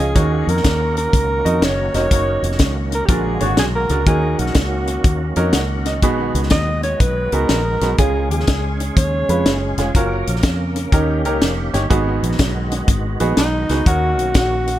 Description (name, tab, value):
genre	uptempo gospel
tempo	123 BPM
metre	4/4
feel	swing 66% on 8ths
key	unclear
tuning	A4 = 439 Hz
part	warm alto saxophone	melody	0.0-9.7, 13.4-14.8 s	D#4 to D#5	-22 LUFS	equal	analog delay
part	clear baby grand piano	accompaniment	0.0-14.6 s	G#2 to F#5	-22 LUFS	right 2 dB	none
part	bright tonewheel organ	sustained chords	0.0-14.8 s	C#3 to A#4	-26 LUFS	right 1 dB	slow rotary speaker, chorus vibrato
part	fingered electric bass	bass	0.0-14.8 s	E#1 to E#2	-21 LUFS	equal	none
part	tight funk drum kit	drums	0.2-14.8 s	hi-hat, kick drum, snare drum	-19 LUFS	equal	analog delay
room	light reverb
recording	echo-heavy mix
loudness	-15 LUFS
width	side -13 dB against mid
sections	0.0-14.8 A section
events	none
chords	0.2 D#m7; 3.1 A#7alt; 4.1 D#m7; 6.0 B6; 8.0 C#; 9.9 F#maj7; 10.9 D#7; 11.9 G#m7; 13.9 D#m7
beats	| 0.15 0.64 1.13 1.62 | 2.11 2.60 3.09 3.58 | 4.07 4.56 5.05 5.54 | 6.03 6.52 7.01 7.50 | 7.99 8.48 8.97 9.46 | 9.95 10.44 10.93 11.41 | 11.90 12.39 12.88 13.37 | 13.86 14.35